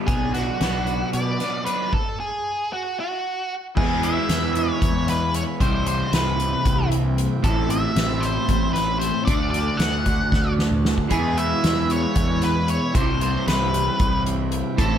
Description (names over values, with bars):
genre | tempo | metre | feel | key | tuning
psychedelic rock | 229 BPM (eighths) | 7/8 | straight | E mixolydian | A4 = 440 Hz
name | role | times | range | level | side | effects
hand-pumped harmonium | sustained chords | 0.0-15.0 s | C4 to B5 | -34 LUFS | right 4 dB | none
crunchy overdriven guitar | riff | 0.0-15.0 s | A2 to F#4 | -24 LUFS | equal | phaser
octave-fuzz lead guitar | melody | 0.1-15.0 s | F#4 to F#5 | -26 LUFS | left 1 dB | distortion, slapback echo
fuzz fingered electric bass | bass | 0.1-15.0 s | A1 to B2 | -26 LUFS | equal | overdrive
soft-mallet drum kit | drums | 0.1-14.9 s | crash cymbal, hi-hat, kick drum, snare drum, toms | -25 LUFS | equal | none
room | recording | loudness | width
light reverb, small room reverb | none | -19 LUFS | side -9 dB against mid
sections
0.0-3.8 A section; 3.8-15.0 B section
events
stop 1.9-3.8; drum fill 10.3-11.1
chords
0.1 Bm; 1.9 N.C.; 3.8 E; 5.6 C; 7.4 Amadd9; 9.3 D; 11.1 E; 12.9 C